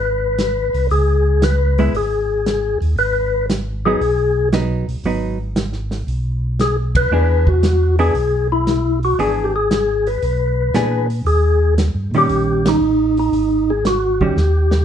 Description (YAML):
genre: soul jazz organ trio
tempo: 116 BPM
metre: 4/4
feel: swing 69% on 8ths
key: G# minor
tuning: A4 = 440 Hz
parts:
  - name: percussive tonewheel organ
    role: melody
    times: 0.0-14.8 s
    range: D#4 to B4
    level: -17 LUFS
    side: left 2 dB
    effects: fast rotary speaker
  - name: mellow tonewheel organ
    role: bass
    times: 0.0-14.8 s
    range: G#1 to A#2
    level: -19 LUFS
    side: equal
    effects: chorus vibrato, slow rotary speaker
  - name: warm soul drum kit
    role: drums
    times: 0.4-14.8 s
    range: hi-hat, kick drum, ride cymbal, snare drum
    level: -21 LUFS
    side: right 1 dB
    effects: none
  - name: hollow-body jazz guitar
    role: accompaniment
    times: 1.8-14.4 s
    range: D#3 to G#4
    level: -20 LUFS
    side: right 2 dB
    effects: none
room: moderate studio reverb, RT60 0.8 s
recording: heard from further back in the room, nothing above 10.4 kHz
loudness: -15 LUFS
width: side -9 dB against mid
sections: 0.0-14.8 A section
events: band accent 6.9, 12.6; drum fill 14.4-14.8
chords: 0.0 C#7(no3); 3.0 G#m7; 7.1 E7; 11.3 D#7; 13.3 G#5